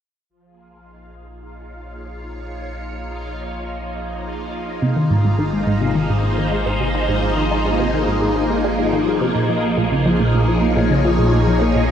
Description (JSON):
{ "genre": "ambient", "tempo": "106 BPM", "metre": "4/4", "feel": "straight", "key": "Bb minor", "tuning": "A4 = 440 Hz", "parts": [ { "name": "phased string machine", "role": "sustained chords", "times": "0.3-11.9 s", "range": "F3 to Db5", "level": "-21 LUFS", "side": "equal", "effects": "ensemble chorus, phaser" }, { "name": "warm sub bass", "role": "bass", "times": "0.3-11.9 s", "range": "Ab1 to Bb1", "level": "-26 LUFS", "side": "equal", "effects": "none" }, { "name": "bubbling stepped-filter texture", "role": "texture", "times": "1.2-9.4 s", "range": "F4 to F5", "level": "-34 LUFS", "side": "right 1 dB", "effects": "chorus, built-in reverb" }, { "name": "resonant blip pluck", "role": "riff", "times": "4.8-11.8 s", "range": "Ab2 to Bb3", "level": "-19 LUFS", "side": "equal", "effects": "phaser, ping-pong delay" } ], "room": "moderate huge ambient reverb, RT60 8.0 s", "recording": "cassette tape", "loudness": "-16 LUFS", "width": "side -8 dB against mid", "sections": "0.3-9.3 A section; 9.3-11.9 B section", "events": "fade-in on string machine 0.3-9.3; fade-in on sub bass 0.3-9.3; fade-in on synth texture 0.3-9.3", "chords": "0.3 Bbm; 4.8 Ab; 9.3 Bbm", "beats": "| 0.29 0.86 1.43 1.99 | 2.56 3.12 3.69 4.26 | 4.82 5.39 5.95 6.52 | 7.09 7.65 8.22 8.78 | 9.35 9.92 10.48 11.05 | 11.62" }